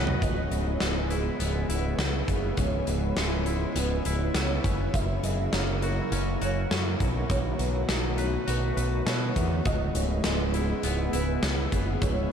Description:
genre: post-rock.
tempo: 102 BPM.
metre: 4/4.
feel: straight.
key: C# minor.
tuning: A4 = 441 Hz.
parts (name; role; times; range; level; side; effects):
soft additive organ-like pad; sustained chords; 0.0-12.3 s; C#3 to F#4; -33 LUFS; equal; ensemble chorus, built-in reverb.
felt-muted upright piano; arpeggios; 0.0-12.3 s; G#4 to E5; -35 LUFS; right 3 dB; ensemble chorus, diffuse ambient delay.
twangy electric guitar; arpeggios; 0.0-12.3 s; C#2 to B4; -34 LUFS; left 2 dB; wide subtle chorus, diffuse ambient delay.
growling picked electric bass; bass; 0.0-12.3 s; C#1 to B2; -29 LUFS; equal; overdrive.
big rock drum kit; drums; 0.1-12.2 s; hi-hat, kick drum, snare drum, toms; -30 LUFS; equal; none.
room: moderate huge ambient reverb, RT60 8.2 s.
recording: dreamy mix soaked in reverb.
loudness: -25 LUFS.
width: side -8 dB against mid.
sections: 0.2-12.3 A section.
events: drum fill 0.0.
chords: 0.2 C#m7; 4.9 F#7; 7.3 B7; 9.7 C#m7.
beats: | 0.22 0.81 1.40 1.99 | 2.58 3.17 3.76 4.35 | 4.94 5.53 6.12 6.71 | 7.30 7.89 8.48 9.07 | 9.66 10.25 10.84 11.43 | 12.02.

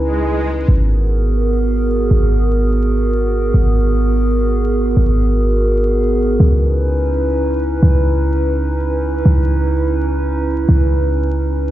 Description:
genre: drum and bass.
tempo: free time.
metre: none.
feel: none.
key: G# minor.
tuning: A4 = 440 Hz.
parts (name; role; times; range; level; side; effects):
warbly tape-like pad; sustained chords; 0.0-11.7 s; B3 to B4; -18 LUFS; right 2 dB; chorus, built-in reverb, vintage 12-bit sampler grit.
warm 808-style bass; bass; 0.0-11.7 s; G#1 to C#2; -15 LUFS; equal; tube saturation.
swell; sound effects; 0.1-0.7 s; none; -24 LUFS; equal; none.
room: little or no reverb.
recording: played on a big sound system in a bare room, large studio reverb, vinyl crackle, nothing above 8.0 kHz.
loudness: -13 LUFS.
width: side -13 dB against mid.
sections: 0.0-11.7 A section.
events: swell 0.1-0.7.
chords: 0.0 C#m9; 0.7 G#m9; 6.4 C#m9.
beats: free time.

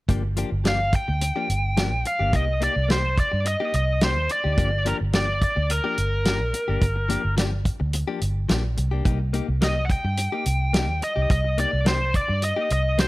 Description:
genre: straight-eighth soul blues.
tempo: 107 BPM.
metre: 4/4.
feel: straight.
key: G minor.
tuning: A4 = 439 Hz.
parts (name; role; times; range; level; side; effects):
direct-recorded clean electric guitar; stabs; 0.1-13.1 s; F3 to G4; -31 LUFS; left 6 dB; warbly pitch drift.
vintage muted fingered electric bass; bass; 0.1-13.1 s; G1 to G2; -24 LUFS; equal; none.
warm soul drum kit; drums; 0.1-13.1 s; hi-hat, kick drum, snare drum; -24 LUFS; equal; none.
biting lead guitar; melody; 0.7-13.1 s; Bb4 to G5; -25 LUFS; equal; overdrive.
room: small room ambience.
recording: none.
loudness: -20 LUFS.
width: side -19 dB against mid.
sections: 0.1-13.1 A section.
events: none.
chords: 0.1 Gm7; 2.3 Cm7; 4.6 Gm7; 9.1 Cm7.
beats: | 0.09 0.65 1.21 1.77 | 2.33 2.90 3.46 4.02 | 4.58 5.14 5.70 6.26 | 6.82 7.38 7.94 8.50 | 9.06 9.62 10.18 10.74 | 11.30 11.87 12.43 12.99.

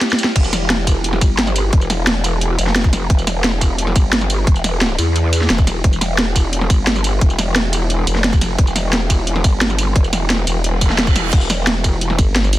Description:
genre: dark technical drum and bass.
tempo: 175 BPM.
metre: 4/4.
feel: straight.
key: E phrygian.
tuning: A4 = 440 Hz.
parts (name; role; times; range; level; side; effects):
drum and bass drum kit; drums; 0.0-12.6 s; crash cymbal, hi-hat, ride cymbal, snare drum, tambourine; -18 LUFS; equal; small room reverb.
growl bass; bass; 0.4-12.2 s; E1 to E2; -18 LUFS; equal; chorus, sidechain pumping.
electronic kick drum; drums; 0.4-12.3 s; none; -13 LUFS; equal; small room reverb.
reverse cymbal; sound effects; 10.8-11.3 s; none; -26 LUFS; right 6 dB; none.
formant-sweep wobble bass; bass; 12.2-12.6 s; G1; -16 LUFS; equal; chorus.
room: little or no reverb.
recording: dense, heavily limited modern master.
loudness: -14 LUFS.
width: side -15 dB against mid.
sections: 0.4-12.6 A section.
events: break 0.0-0.4; drum fill 0.0-0.4; drop 0.4-12.6; reverse cymbal 10.8-11.3.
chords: 0.4 Em.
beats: 0.01 | 0.36 0.70 1.04 1.39 | 1.73 2.07 2.41 2.76 | 3.10 3.44 3.79 4.13 | 4.47 4.81 5.16 5.50 | 5.84 6.18 6.53 6.87 | 7.21 7.56 7.90 8.24 | 8.59 8.93 9.27 9.61 | 9.96 10.30 10.64 10.98 | 11.33 11.67 12.01 12.36.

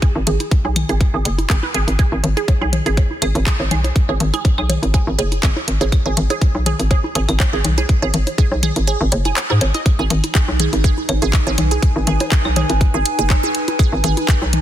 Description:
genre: minimal techno.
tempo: 122 BPM.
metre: 4/4.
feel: swing 54% on 16ths.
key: G# minor.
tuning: A4 = 441 Hz.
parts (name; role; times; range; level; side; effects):
resonant blip pluck; riff; 0.0-14.3 s; G#4 to D#5; -25 LUFS; right 5 dB; phaser, sidechain pumping, digital delay.
electronic kick drum; drums; 0.0-14.4 s; none; -14 LUFS; equal; studio reverb.
garage drum kit; drums; 0.0-14.6 s; handclaps, hi-hat; -23 LUFS; equal; studio reverb.
hollow knocking FM bass; bass; 0.2-14.6 s; F#1 to G#2; -18 LUFS; equal; sidechain pumping.
electronic bongos, toms and claves; percussion; 0.2-14.6 s; none; -24 LUFS; left 1 dB; studio reverb, tape echo.
warbly tape-like pad; texture; 9.9-14.6 s; D#4 to G#5; -23 LUFS; right 2 dB; chorus, built-in reverb, sidechain pumping.
room: digital ambience.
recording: dense, heavily limited modern master.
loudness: -14 LUFS.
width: side -12 dB against mid.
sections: 0.0-9.9 A section; 9.9-14.6 B section.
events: filter sweep on synth arpeggio sound 0.0-9.9; kick drops out 8.9-9.9; drop 9.9-14.6.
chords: 0.0 G#m.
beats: | 0.02 0.51 1.01 1.50 | 1.99 2.48 2.97 3.46 | 3.96 4.45 4.94 5.43 | 5.92 6.42 6.91 7.40 | 7.89 8.38 8.88 9.37 | 9.86 10.35 10.84 11.33 | 11.83 12.32 12.81 13.30 | 13.79 14.29.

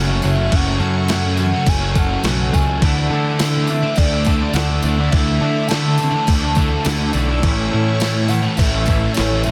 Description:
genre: rock, shoegaze and dream pop.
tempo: 104 BPM.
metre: 4/4.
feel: straight.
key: D lydian.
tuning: A4 = 441 Hz.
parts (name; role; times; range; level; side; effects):
phased string machine; sustained chords; 0.0-9.5 s; A4 to D6; -33 LUFS; equal; ensemble chorus, phaser.
direct-recorded clean electric guitar; arpeggios; 0.0-9.5 s; E3 to A4; -32 LUFS; equal; subtle chorus, analog delay.
thick fuzz guitar; riff; 0.0-9.5 s; F#2 to D4; -25 LUFS; equal; distortion, subtle chorus.
twangy electric guitar; riff; 0.0-9.5 s; A2 to F#4; -28 LUFS; equal; reverse reverb.
fuzz picked electric bass; bass; 0.0-9.5 s; F#1 to D3; -22 LUFS; equal; overdrive.
tambourine; percussion; 0.2-9.5 s; none; -36 LUFS; equal; none.
pure sine lead; melody; 0.3-9.5 s; C#5 to A5; -28 LUFS; equal; chorus, phaser, analog delay.
crisp 8-bit digital drum machine; drums; 0.5-9.3 s; crash cymbal, kick drum, snare drum; -23 LUFS; equal; none.
room: digital ambience.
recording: dense, heavily limited modern master.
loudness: -17 LUFS.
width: mono.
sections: 0.0-9.5 A section.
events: none.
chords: 0.0 F#m; 2.8 Dsus2; 7.4 A.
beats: | 0.53 1.10 1.68 2.25 | 2.83 3.40 3.98 4.55 | 5.13 5.71 6.28 6.86 | 7.44 8.02 8.59 9.17.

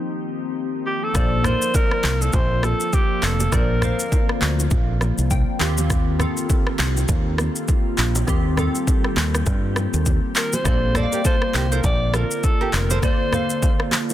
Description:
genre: afrobeats.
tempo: 101 BPM.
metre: 4/4.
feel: swing 58% on 16ths.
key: Bb major.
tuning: A4 = 438 Hz.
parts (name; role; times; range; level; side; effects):
glassy digital keys; accompaniment; 0.0-14.1 s; Eb3 to G5; -28 LUFS; left 2 dB; chorus.
glassy FM pad; sustained chords; 0.0-14.1 s; D3 to A4; -29 LUFS; equal; ensemble chorus, built-in reverb.
breathy alto saxophone; melody; 0.9-4.4, 10.4-13.9 s; G4 to D5; -24 LUFS; equal; digital delay.
fingered electric bass; bass; 1.1-13.0 s; F1 to G2; -21 LUFS; equal; none.
deep house drum kit; drums; 1.1-14.1 s; handclaps, kick drum, rim click, shaker; -21 LUFS; equal; none.
congas and bongos; percussion; 1.1-14.1 s; none; -30 LUFS; right 2 dB; none.
nylon-string guitar; riff; 11.0-13.0 s; F4 to C5; -29 LUFS; right 6 dB; digital delay.
room: little or no reverb.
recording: dense, heavily limited modern master.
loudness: -18 LUFS.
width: side -12 dB against mid.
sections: 0.0-1.1 A section; 1.1-14.1 B section.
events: break 0.0-1.1; synth keys fill 5.0-5.9.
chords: 0.0 Eb69; 1.1 Bbmaj9; 5.6 Eb69; 10.7 Bbmaj9.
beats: 0.56 | 1.15 1.74 2.34 2.93 | 3.53 4.12 4.71 5.31 | 5.90 6.50 7.09 7.68 | 8.28 8.87 9.47 10.06 | 10.65 11.25 11.84 12.44 | 13.03 13.62.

